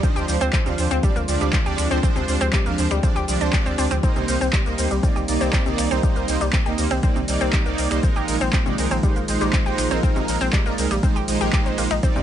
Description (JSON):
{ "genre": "progressive house", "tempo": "120 BPM", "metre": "4/4", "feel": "straight", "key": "unclear", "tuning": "A4 = 440 Hz", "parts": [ { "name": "warm analog pad", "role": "sustained chords", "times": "0.0-12.2 s", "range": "D3 to G4", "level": "-29 LUFS", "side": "left 1 dB", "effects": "chorus, sidechain pumping" }, { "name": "analog pluck", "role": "arpeggios", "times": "0.0-12.2 s", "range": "C3 to G4", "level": "-26 LUFS", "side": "left 1 dB", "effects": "chorus, sidechain pumping, digital delay" }, { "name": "soft supersaw", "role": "stabs", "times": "0.0-12.2 s", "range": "F3 to F5", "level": "-25 LUFS", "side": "right 4 dB", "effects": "sidechain pumping, digital delay" }, { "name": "big-room dance drum kit", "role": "drums", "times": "0.0-12.2 s", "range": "finger snaps, handclaps, hi-hat, ride cymbal, shaker", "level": "-28 LUFS", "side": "equal", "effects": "overdrive" }, { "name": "electronic kick drum", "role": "drums", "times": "0.0-12.1 s", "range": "none", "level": "-20 LUFS", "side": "equal", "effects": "none" }, { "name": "saturated sub bass", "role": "bass", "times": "0.2-12.2 s", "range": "Bb1 to Eb2", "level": "-25 LUFS", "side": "equal", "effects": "sidechain pumping" } ], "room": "little or no reverb", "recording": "nothing above 10.4 kHz", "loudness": "-18 LUFS", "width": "side -10 dB against mid", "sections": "0.0-12.2 A section", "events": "none", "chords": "0.0 Dm7b5; 4.0 Cm7; 8.0 Bb7sus4", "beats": "| 0.03 0.53 1.03 1.53 | 2.03 2.53 3.03 3.53 | 4.03 4.53 5.03 5.53 | 6.03 6.53 7.03 7.53 | 8.03 8.53 9.03 9.53 | 10.03 10.53 11.03 11.53 | 12.03" }